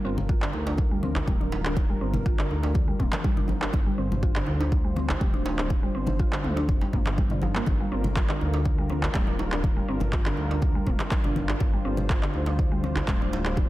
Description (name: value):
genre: afro house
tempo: 122 BPM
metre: 4/4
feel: straight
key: G minor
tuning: A4 = 440 Hz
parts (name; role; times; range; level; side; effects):
- warm analog pad; sustained chords; 0.0-13.7 s; G3 to C5; -35 LUFS; right 2 dB; chorus, vintage 12-bit sampler grit, sidechain pumping
- mallet-like synth pluck; arpeggios; 0.0-13.6 s; D3 to F4; -32 LUFS; equal; lush chorus, vintage 12-bit sampler grit, sidechain pumping, digital delay
- dark detuned saw bass; bass; 0.0-13.7 s; D1 to D2; -29 LUFS; equal; sidechain pumping
- congas; percussion; 0.2-13.7 s; none; -34 LUFS; left 3 dB; none
- electronic kick drum; drums; 0.3-13.7 s; none; -25 LUFS; equal; overdrive
- deep house drum kit; drums; 0.4-13.5 s; handclaps, toms; -33 LUFS; equal; overdrive
- djembe; percussion; 0.5-13.7 s; none; -35 LUFS; right 1 dB; none
room: digital ambience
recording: dense, heavily limited modern master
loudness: -23 LUFS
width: side -16 dB against mid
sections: 0.0-13.7 A section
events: filter sweep on synth pluck 0.0-13.7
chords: 0.0 Gm7